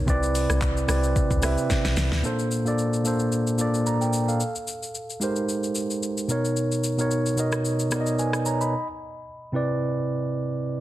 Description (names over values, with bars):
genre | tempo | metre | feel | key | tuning
amapiano | 111 BPM | 4/4 | swing 55% on 16ths | Bb major | A4 = 440 Hz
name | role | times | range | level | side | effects
mellow tine electric piano | accompaniment | 0.0-10.8 s | Bb2 to B5 | -24 LUFS | right 1 dB | none
deep log drum bass | bass | 0.0-2.2 s | B1 to D2 | -25 LUFS | equal | none
smooth R&B drum kit | drums | 0.1-8.7 s | handclaps, hi-hat, kick drum, rim click, shaker, snare drum | -28 LUFS | left 1 dB | none
room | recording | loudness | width
light reverb, digital ambience | dense, heavily limited modern master | -22 LUFS | side -14 dB against mid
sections
0.0-2.2 A section; 2.2-10.8 B section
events
drop 0.0-2.2; drum fill 1.7-2.2; break 8.7-10.8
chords
0.1 Cmaj9; 2.2 Bbmaj9; 4.4 Abmaj9; 6.3 Bmaj9; 8.7 Cmaj9